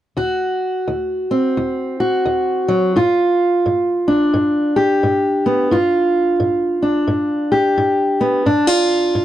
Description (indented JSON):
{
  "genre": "blues",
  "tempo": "87 BPM",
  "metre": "4/4",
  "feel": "swing 61% on 8ths",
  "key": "unclear",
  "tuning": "A4 = 441 Hz",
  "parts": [
    { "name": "fingerpicked steel-string acoustic guitar", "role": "accompaniment", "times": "0.2-9.2 s", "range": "D2 to G4", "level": "-14 LUFS", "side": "equal", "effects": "none" }
  ],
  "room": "light reverb",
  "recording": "dry, close 1970s-style studio recording",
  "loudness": "-14 LUFS",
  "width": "side -12 dB against mid",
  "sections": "0.2-9.2 A section",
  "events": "none",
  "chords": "0.2 D7; 3.0 G7(no3)"
}